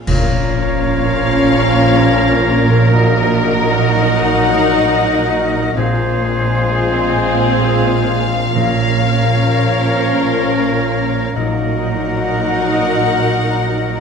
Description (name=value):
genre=cinematic, emotional film score for orchestra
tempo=43 BPM (dotted quarters)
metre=6/8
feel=rubato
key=Bb minor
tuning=A4 = 438 Hz
part: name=warm studio violin section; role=melody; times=0.1-14.0 s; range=F5 to Gb5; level=-21 LUFS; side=left 4 dB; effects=none
part: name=clear oboe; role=second line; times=0.1-14.0 s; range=Ab4 to Bb4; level=-24 LUFS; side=right 2 dB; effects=none
part: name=dark clarinet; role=second line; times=0.1-14.0 s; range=F4 to Gb4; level=-25 LUFS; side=left 4 dB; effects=none
part: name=mellow silver concert flute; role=second line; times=0.1-14.0 s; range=C5 to Eb5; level=-23 LUFS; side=left 2 dB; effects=none
part: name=rich symphonic violin section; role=second line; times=0.1-14.0 s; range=Ab4 to Bb4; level=-23 LUFS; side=left 1 dB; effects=none
part: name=rich studio viola section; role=accompaniment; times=0.1-14.0 s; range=C4 to Eb4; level=-23 LUFS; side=right 1 dB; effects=none
part: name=dark French horn section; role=sustained chords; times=0.1-14.0 s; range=F3 to F4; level=-22 LUFS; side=left 2 dB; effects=none
part: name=concert harp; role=arpeggios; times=0.1-14.0 s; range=Bb2 to Eb5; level=-25 LUFS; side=left 8 dB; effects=none
part: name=dark studio cello section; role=bass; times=0.1-14.0 s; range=Bb2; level=-22 LUFS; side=equal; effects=none
part: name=rich studio double bass section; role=bass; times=0.1-14.0 s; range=Bb1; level=-19 LUFS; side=right 7 dB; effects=none
part: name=clash cymbals and concert bass drum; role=percussion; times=0.1-1.9 s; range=none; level=-21 LUFS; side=right 1 dB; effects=none
part: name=timpani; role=percussion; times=8.6-9.9 s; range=Bb2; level=-26 LUFS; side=right 2 dB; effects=none
room=moderate scoring stage reverb, RT60 2.0 s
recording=nothing above 10.8 kHz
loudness=-12 LUFS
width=side -6 dB against mid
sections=0.1-14.0 A section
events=band accent 0.1-1.0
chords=0.1 Bbm; 2.9 Ebm/Bb; 5.8 Fm/Bb; 8.5 Bbm; 11.4 Ebm/Bb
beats=| 0.08 1.52 | 2.94 4.35 | 5.76 7.16 | 8.55 9.95 | 11.35 12.74